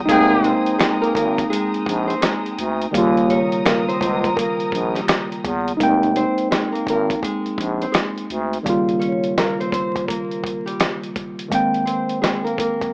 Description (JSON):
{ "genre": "hip hop, boom-bap hip-hop", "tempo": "84 BPM", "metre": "4/4", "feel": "swing 62% on 16ths", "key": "F minor", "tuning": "A4 = 437 Hz", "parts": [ { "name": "tine electric piano", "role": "accompaniment", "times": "0.0-12.9 s", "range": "Db3 to G5", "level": "-20 LUFS", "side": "equal", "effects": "medium stereo tremolo, cassette tape, high-pass filter, low-pass filter" }, { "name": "warm studio string section", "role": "sustained chords", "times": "0.0-5.8 s", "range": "Ab4 to Eb6", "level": "-28 LUFS", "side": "equal", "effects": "high-pass filter, low-pass filter" }, { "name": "mellow horn section", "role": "stabs", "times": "0.1-0.6 s", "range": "Eb3 to Ab4", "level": "-21 LUFS", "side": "left 1 dB", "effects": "high-pass filter, low-pass filter, analog delay" }, { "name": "growling FM bass", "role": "bass", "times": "0.1-8.6 s", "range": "F1 to E2", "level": "-22 LUFS", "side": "equal", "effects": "none" }, { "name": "dusty soul sampler-style drum kit", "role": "drums", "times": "0.1-12.9 s", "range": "hi-hat, kick drum, rim click, snare drum", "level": "-22 LUFS", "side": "equal", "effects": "none" }, { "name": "nylon-string guitar", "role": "melody", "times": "0.4-12.9 s", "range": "G3 to Db5", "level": "-24 LUFS", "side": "equal", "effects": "high-pass filter, low-pass filter, analog delay" }, { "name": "finger snap", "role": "percussion", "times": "0.8-5.3 s", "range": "none", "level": "-33 LUFS", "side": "left 1 dB", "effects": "none" } ], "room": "small room ambience", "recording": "rough home demo mix, vinyl crackle, AM radio sound", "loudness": "-17 LUFS", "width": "side -30 dB against mid", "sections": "0.0-5.8 A section; 5.8-12.9 B section", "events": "none", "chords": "0.1 Fm11; 2.9 Eb7; 5.8 Fm11; 8.7 Eb7; 11.5 Abmaj9/Eb", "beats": "| 0.09 0.80 1.51 2.23 | 2.94 3.66 4.37 5.09 | 5.80 6.51 7.23 7.94 | 8.66 9.37 10.09 10.80 | 11.52 12.23" }